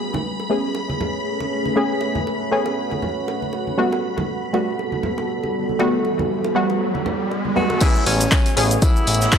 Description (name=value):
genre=deep house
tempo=119 BPM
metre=4/4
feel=swing 56% on 16ths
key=A major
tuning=A4 = 437 Hz
part: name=deep dark ambient pad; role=sustained chords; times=0.0-9.4 s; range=G3 to C#5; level=-25 LUFS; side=right 1 dB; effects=chorus, built-in reverb, sidechain pumping
part: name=filtered dub chord stab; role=stabs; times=0.0-9.4 s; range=G3 to G#4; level=-23 LUFS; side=equal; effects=chorus, sidechain pumping, tape echo
part: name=string machine, violins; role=texture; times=0.0-7.8 s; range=B5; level=-32 LUFS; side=left 1 dB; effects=ensemble chorus
part: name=congas and bongos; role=percussion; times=0.1-7.8 s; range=none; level=-29 LUFS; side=right 3 dB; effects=none
part: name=riser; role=sound effects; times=5.2-7.8 s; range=none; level=-29 LUFS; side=right 2 dB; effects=none
part: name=clear tenor saxophone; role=melody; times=7.6-9.4 s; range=C#4 to F#4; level=-23 LUFS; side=equal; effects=tape echo
part: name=electronic kick drum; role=drums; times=7.8-9.4 s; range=none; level=-16 LUFS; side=left 1 dB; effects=overdrive
part: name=loose indie drum kit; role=drums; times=7.8-9.4 s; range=hi-hat, snare drum, tambourine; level=-30 LUFS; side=left 1 dB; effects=sidechain pumping on hats, high-pass filter on hats, high-pass filter on snare, sidechain pumping on perc, high-pass filter on perc, high-pass filter on room
part: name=punchy analog drum machine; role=drums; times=7.8-9.4 s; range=crash cymbal, handclaps, hi-hat, shaker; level=-22 LUFS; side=left 1 dB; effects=overdrive
part: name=smooth synth bass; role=bass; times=8.1-9.3 s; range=A1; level=-20 LUFS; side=equal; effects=sidechain pumping
room=moderate lush hall reverb, RT60 1.9 s, studio reverb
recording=none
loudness=-18 LUFS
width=side -7 dB against mid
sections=0.0-7.8 A section; 7.8-9.4 B section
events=filter sweep on synth stab 0.0-7.8; riser 5.2-7.8; drop 7.8-9.4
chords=0.0 Amaj9; 3.5 Gmaj9; 7.8 Amaj9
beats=0.25 0.76 1.26 | 1.76 2.27 2.77 3.28 | 3.78 4.28 4.79 5.29 | 5.80 6.30 6.80 7.31 | 7.81 8.32 8.82 9.33